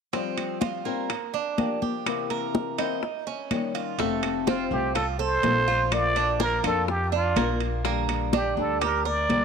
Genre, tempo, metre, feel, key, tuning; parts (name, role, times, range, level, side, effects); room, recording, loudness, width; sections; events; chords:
latin, Cuban son and guajira; 124 BPM; 4/4; straight; F major; A4 = 442 Hz
flamenco guitar; accompaniment; 0.1-9.4 s; C3 to G4; -31 LUFS; left 15 dB
Cuban tres; arpeggios; 0.1-9.4 s; A3 to Bb4; -29 LUFS; right 12 dB
bongos; percussion; 0.1-9.4 s; -32 LUFS; left 16 dB
congas; percussion; 0.1-9.4 s; -30 LUFS; left 1 dB
timbales; percussion; 0.1-9.4 s; -36 LUFS; right 13 dB
claves; percussion; 0.4-9.1 s; -41 LUFS; left 16 dB
upright bass; bass; 4.0-9.4 s; F1 to F2; -30 LUFS; equal
trumpet with plunger mute; melody; 4.5-9.4 s; F4 to D5; -26 LUFS; equal
light reverb, studio reverb; 1960s-style stereo with parts hard left and right; -23 LUFS; side -6 dB against mid
0.1-4.0 A section; 4.0-9.4 B section
0.1 Fsus2; 1.1 Gm7; 2.1 C7; 3.0 Eb7; 4.0 F; 5.9 Bb; 7.9 Gm/Bb